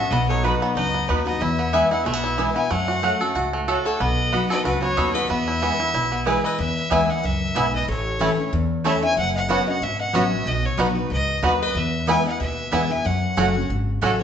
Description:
bluegrass; 186 BPM; 4/4; swing 55% on 8ths; E major; A4 = 435 Hz
clear fiddle; melody; 0.0-14.2 s; A4 to G#5; -26 LUFS; equal
lap resonator guitar; second line; 0.0-14.2 s; F#4 to E5; -29 LUFS; left 2 dB
picked steel-string acoustic guitar; accompaniment; 0.0-14.2 s; E2 to F#4; -26 LUFS; left 2 dB
bluegrass banjo; arpeggios; 0.0-14.1 s; A3 to A4; -25 LUFS; right 1 dB
upright bass; bass; 0.0-14.2 s; F#1 to F#2; -26 LUFS; equal
mandolin; stabs; 0.4-14.1 s; A3 to B5; -27 LUFS; right 3 dB
wet large studio reverb, RT60 1.1 s; band playing live in one room, nothing above 7.9 kHz; -19 LUFS; side -8 dB against mid
0.0-6.6 A section; 6.6-14.2 A section
0.1 B; 1.4 E; 2.7 F#m; 4.0 B; 5.3 E; 7.9 A; 9.2 F#sus4; 10.5 B; 11.8 E; 13.0 F#m

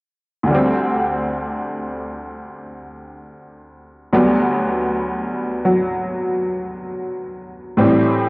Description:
solo jazz; 66 BPM; 4/4; swing 69% on 8ths; A4 = 440 Hz
honky-tonk upright piano; solo; 0.4-8.3 s; D2 to C4; -18 LUFS; equal
moderate spring reverb, RT60 1.3 s, small room ambience; home recording on cassette, nothing above 10.8 kHz; -17 LUFS; side -30 dB against mid
0.5-8.3 A section
0.5 D7sus4; 4.1 Gmaj7/D; 7.8 Am7

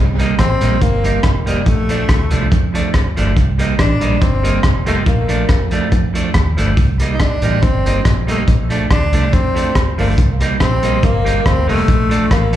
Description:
ska; 141 BPM; 4/4; swing 53% on 8ths; C dorian; A4 = 441 Hz
vintage muted fingered electric bass; bass; 0.0-12.6 s; F1 to F2; -17 LUFS; equal
clean electric guitar; accompaniment; 0.2-12.6 s; F3 to Eb4; -20 LUFS; right 4 dB; spring reverb, plate reverb, slapback echo
crunchy breakbeat drum kit; drums; 0.2-12.6 s; hi-hat, kick drum, rim click; -16 LUFS; equal; tape echo
breathy tenor saxophone; melody; 0.4-12.6 s; G3 to Eb4; -20 LUFS; left 1 dB; tape echo, plate reverb, slapback echo
light reverb; live gig heard through the venue's PA, club reverb; -12 LUFS; side -12 dB against mid
0.0-12.6 A section
0.0 Cm7; 1.7 Bbmaj7; 3.4 Cm7; 5.1 Bbmaj7; 6.8 Cm7; 8.5 Bbmaj7; 10.2 Cm7; 11.9 Bbmaj7

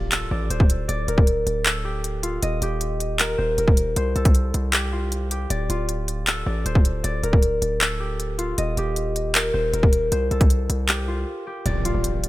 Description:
hip hop, trap; 156 BPM; 4/4; half-time; D phrygian; A4 = 438 Hz
concert harp; melody; 0.0-12.3 s; F4 to Eb5; -26 LUFS; left 1 dB; low-pass filter, digital delay
hard-hitting 808-style bass; bass; 0.0-12.3 s; D1 to C2; -25 LUFS; equal
impact; sound effects; 0.0-0.9, 11.7-12.3 s; -31 LUFS; right 1 dB
trap drum kit; drums; 0.1-12.3 s; handclaps, hi-hat, kick drum; -20 LUFS; equal
little or no reverb; bright 1980s-style digital production; -20 LUFS; side -17 dB against mid
0.0-11.7 A section
impact 0.0-0.9, 11.7-12.3; break 11.3-11.7
0.0 Dm; 2.4 Eb; 4.0 Fadd9/C; 5.5 Dm; 8.6 Eb; 10.1 Fadd9/C; 11.7 Dm

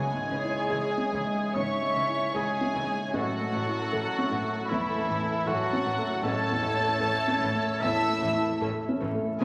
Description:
cinematic, emotional film score for orchestra; 69-79 BPM; 4/4; rubato; A4 = 440 Hz
dark studio violin section; melody; 0.0-9.4 s; E5 to E6; -36 LUFS; equal
flute section; second line; 0.0-9.4 s; A4 to A5; -38 LUFS; equal
warm oboe; second line; 0.0-9.4 s; E4 to E5; -35 LUFS; equal
warm studio violin section; second line; 0.0-9.4 s; E4 to E5; -36 LUFS; equal
felt-muted upright piano; accompaniment; 0.0-9.4 s; A1 to A4; -34 LUFS; equal
dark French horn section; sustained chords; 0.0-9.4 s; E3 to E4; -38 LUFS; equal
concert harp; arpeggios; 0.0-9.4 s; A2 to G#5; -42 LUFS; equal
warm studio viola section; accompaniment; 0.3-9.4 s; E3 to C#4; -44 LUFS; equal
dark studio double bass section; bass; 0.3-9.4 s; A1 to C#2; -43 LUFS; equal
warm studio cello section; bass; 0.3-9.4 s; A2 to C#3; -43 LUFS; equal
timpani; percussion; 9.4 s; C#3; -41 LUFS; equal
wet scoring stage reverb, RT60 1.7 s; vinyl crackle; -28 LUFS; mono
0.0-9.4 A section
0.0 C#m; 3.1 A6

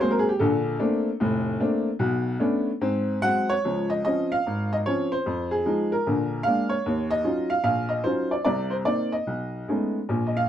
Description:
solo jazz; 149 BPM; 4/4; swing 67% on 8ths, rubato; Db major from 3.6 s; A4 = 440 Hz
clear upright piano; solo; 0.0-10.5 s; F1 to F#5; -22 LUFS; equal
light reverb; dark, warm production; -22 LUFS; side -10 dB against mid
0.0-3.6 A section; 3.6-10.5 B section
upright piano solo 0.0-3.6
0.4 Bbmaj9; 2.0 Bm9; 2.8 G#7; 3.6 Dbmaj7; 5.3 Fm7; 6.1 Bb7; 6.8 Ebm9; 8.5 Cm9; 9.3 Cb13

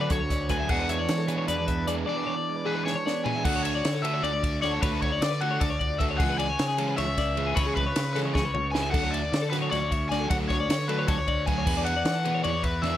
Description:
math rock and midwest emo; 306 BPM (eighths); 7/8; straight; D lydian; A4 = 440 Hz
crunchy overdriven guitar; melody; 0.0-13.0 s; B4 to G#5; -30 LUFS; left 2 dB; spring reverb
electric guitar through a small old amp; accompaniment; 0.0-4.8 s; D2 to F#4; -34 LUFS; right 7 dB
twelve-string electric guitar; arpeggios; 0.0-13.0 s; G#4 to E5; -32 LUFS; left 5 dB
crunchy overdriven guitar; riff; 0.0-13.0 s; E3 to A4; -33 LUFS; right 2 dB; spring reverb
fuzz fingered electric bass; bass; 0.0-13.0 s; C#2 to E3; -30 LUFS; equal; overdrive
compact cocktail drum kit; drums; 0.1-12.9 s; crash cymbal, hi-hat, kick drum, ride cymbal, snare drum, toms; -30 LUFS; equal
light reverb; -24 LUFS; side -12 dB against mid
0.0-3.5 A section; 3.5-13.0 B section
drum fill 2.9-3.5, 8.3-8.9
0.0 Dmaj7; 0.7 E7; 3.5 Dmaj7; 6.2 C#m7; 8.9 Dmaj7; 11.7 E7

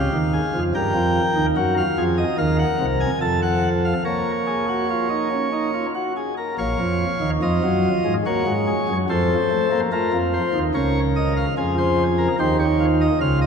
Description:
classical, baroque-style 3-part fugue for pipe organ; 72 BPM; 3/4; straight; Bb minor; A4 = 440 Hz
chamber organ, principal chorus; solo; 0.0-13.5 s; Bb1 to A5; -18 LUFS; equal
wet cathedral reverb, RT60 4.4 s; minimal, uncompressed stereo recording; -18 LUFS; side -6 dB against mid
0.0-6.6 A section; 6.6-13.5 B section
0.0 Db; 0.7 Ebadd9; 1.6 Gb; 2.4 Cm7b5/Eb; 3.2 F; 4.1 Bbm; 8.2 Gbadd9; 9.1 F7; 10.7 Bbm/Db; 11.6 Fm

